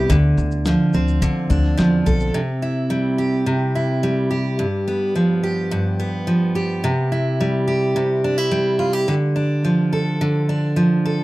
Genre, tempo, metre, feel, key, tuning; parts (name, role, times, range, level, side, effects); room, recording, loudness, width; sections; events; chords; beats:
acoustic pop; 107 BPM; 4/4; straight; C major; A4 = 440 Hz
picked steel-string acoustic guitar; accompaniment; 0.0-11.2 s; G2 to A4; -17 LUFS; right 1 dB
upright bass; bass; 0.0-2.3 s; B1 to D3; -20 LUFS; left 1 dB
dusty soul sampler-style drum kit; drums; 0.1-2.3 s; kick drum, shaker, snare drum; -24 LUFS; left 1 dB
studio ambience; dry, close 1970s-style studio recording; -17 LUFS; side -18 dB against mid
0.0-2.3 A section; 2.3-11.2 B section
0.1 Dm7; 2.3 C; 4.6 G7; 6.8 C; 9.1 Dm
| 0.10 0.66 1.22 1.78 | 2.35 2.91 3.47 4.03 | 4.60 5.16 5.72 6.28 | 6.85 7.41 7.97 8.53 | 9.09 9.66 10.22 10.78